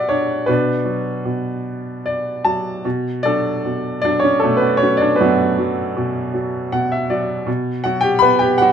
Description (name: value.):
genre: classical, lyrical solo piano.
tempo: 52 BPM (dotted quarters).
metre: 6/8.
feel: rubato.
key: B minor.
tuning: A4 = 443 Hz.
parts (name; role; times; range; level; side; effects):
clear upright piano; solo; 0.0-8.7 s; F#2 to B5; -16 LUFS; equal; none.
room: light reverb.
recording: close, detailed microphones.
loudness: -16 LUFS.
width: side -8 dB against mid.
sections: 0.0-2.8 A section; 2.8-8.7 B section.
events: upright piano fill 1.7-2.8, 6.3-7.5.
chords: 0.0 Bm; 2.8 Bm9; 7.5 Gmaj7/B.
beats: | 0.48 1.65 | 2.85 4.04 | 5.20 6.34 | 7.47 8.62.